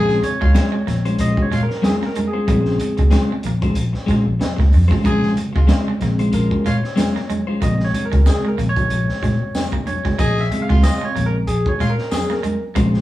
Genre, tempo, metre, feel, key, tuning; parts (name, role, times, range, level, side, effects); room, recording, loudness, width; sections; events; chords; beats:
funk; 93 BPM; 4/4; swing 56% on 16ths; Bb minor; A4 = 440 Hz
growling tenor saxophone; second line; 0.0-11.9 s; F4 to Ab4; -26 LUFS; left 2 dB
clean electric guitar; accompaniment; 0.0-7.6, 12.8-13.0 s; Ab3 to C5; -21 LUFS; left 2 dB
clean electric guitar; riff; 0.0-12.9 s; Ab3 to Bb3; -26 LUFS; right 3 dB
barky tine electric piano; stabs; 0.0-13.0 s; C3 to F5; -23 LUFS; equal; overdrive
vintage muted fingered electric bass; bass; 0.0-13.0 s; A1 to Bb2; -17 LUFS; equal
crunchy breakbeat drum kit; drums; 0.1-13.0 s; hi-hat, kick drum, snare drum; -23 LUFS; equal
congas; percussion; 0.2-12.9 s; -29 LUFS; equal
tambourine; percussion; 5.7-12.3 s; -36 LUFS; left 2 dB
moderate studio reverb, RT60 0.6 s; band playing live in one room; -16 LUFS; side -15 dB against mid
0.0-13.0 A section
tine electric piano solo 0.0-13.0
0.0 Bbm9
0.55 1.19 1.83 | 2.48 3.12 3.76 4.41 | 5.05 5.69 6.33 6.98 | 7.62 8.26 8.91 9.55 | 10.19 10.84 11.48 12.12 | 12.77